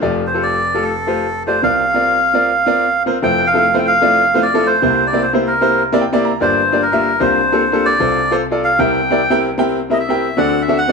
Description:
gospel; 151 BPM; 4/4; swing 60% on 8ths; F major; A4 = 440 Hz
clear grand piano; accompaniment; 0.0-10.9 s; F1 to Bb5; -16 LUFS; left 1 dB
melodica; melody; 0.3-10.9 s; A4 to G5; -15 LUFS; right 1 dB; slapback echo
moderate echo chamber reverb, RT60 2.1 s; -12 LUFS; side -4 dB against mid
0.0-3.2 A section; 3.2-10.9 B section
grand piano fill 5.8-6.4
0.0 F69; 1.6 C9sus4; 3.2 Fmaj7; 4.8 C7; 6.4 Gm7; 7.2 C9sus4; 8.0 F/C; 8.8 C7; 10.4 D7

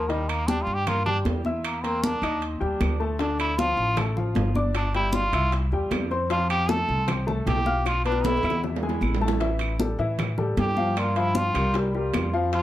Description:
Afro-Cuban jazz; 154 BPM; 4/4; straight; A4 = 440 Hz
trombone with metal mute; melody; 0.0-12.6 s; F3 to A4; -28 LUFS; right 1 dB; analog delay
warm upright piano; accompaniment; 0.0-12.6 s; D3 to F6; -28 LUFS; left 3 dB
upright bass; bass; 0.0-12.6 s; G1 to A2; -27 LUFS; equal
congas; percussion; 0.1-12.6 s; -31 LUFS; equal
timbales; percussion; 0.1-12.6 s; -34 LUFS; right 6 dB
claves; percussion; 0.3-12.3 s; -36 LUFS; right 5 dB
bongos; percussion; 3.2-12.6 s; -34 LUFS; left 6 dB
moderate studio ambience, RT60 0.5 s; -22 LUFS; side -13 dB against mid
0.0-9.4 A section; 9.4-12.6 A section
trombone solo 0.0-12.6; drum fill 7.9-9.4
0.1 Eb; 1.6 C7#9; 2.4 Eb; 3.2 Dm; 4.8 G5; 5.5 C; 6.3 F; 7.9 Dm69/B; 8.6 Eadd11; 9.4 A5; 11.0 Gm7; 11.7 C5

